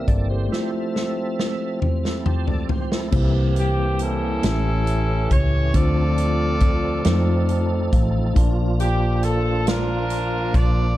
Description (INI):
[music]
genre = slow gospel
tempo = 46 BPM (dotted quarters)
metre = 6/8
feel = straight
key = F major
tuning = A4 = 440 Hz
[part]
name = mellow tine electric piano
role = accompaniment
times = 0.0-11.0 s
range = A2 to A5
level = -26 LUFS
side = left 1 dB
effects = fast stereo tremolo
[part]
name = tonewheel organ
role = sustained chords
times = 0.0-10.9 s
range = C3 to A5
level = -29 LUFS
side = right 3 dB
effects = fast rotary speaker, chorus vibrato
[part]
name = hollow-body short-scale fingered electric bass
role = bass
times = 0.0-10.9 s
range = G1 to F2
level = -22 LUFS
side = equal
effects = none
[part]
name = natural country drum kit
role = drums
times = 0.1-10.7 s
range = crash cymbal, hi-hat, kick drum, snare drum, toms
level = -22 LUFS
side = equal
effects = none
[part]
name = clear horn section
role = melody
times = 3.6-11.0 s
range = Db4 to D5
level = -26 LUFS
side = equal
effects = none
[sound]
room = studio ambience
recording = dark, warm production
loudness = -18 LUFS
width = side -15 dB against mid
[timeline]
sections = 0.0-3.1 A section; 3.1-11.0 B section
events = break 0.5-3.1; drum fill 0.5-3.1; tonewheel organ fill 1.8-3.1; tine electric piano fill 7.1-8.4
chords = 0.0 C7; 0.5 Fmaj7; 3.1 C7; 4.4 A7; 5.7 Dm7; 7.1 F7; 8.4 Bbmaj7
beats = | 0.51 1.82 | 3.13 4.44 | 5.75 7.05 | 8.36 9.67